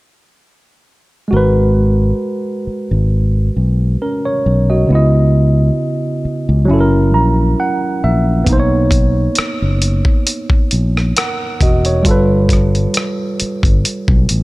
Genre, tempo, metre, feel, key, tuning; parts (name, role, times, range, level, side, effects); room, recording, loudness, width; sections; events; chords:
R&B, neo-soul; 67 BPM; 4/4; swing 53% on 16ths; G# minor; A4 = 443 Hz
tine electric piano; accompaniment; 1.3-14.4 s; C#3 to A#5; -16 LUFS; right 1 dB
fingered electric bass; bass; 1.3-14.4 s; E1 to C#2; -13 LUFS; equal
dusty soul sampler-style drum kit; drums; 8.5-14.4 s; hi-hat, kick drum, rim click; -15 LUFS; equal
light reverb; -12 LUFS; side -20 dB against mid
1.3-14.4 A section
tine electric piano fill 6.7-8.5
1.3 G#m9; 4.9 C#m9; 6.7 F#7; 8.5 Bmaj9; 12.1 G9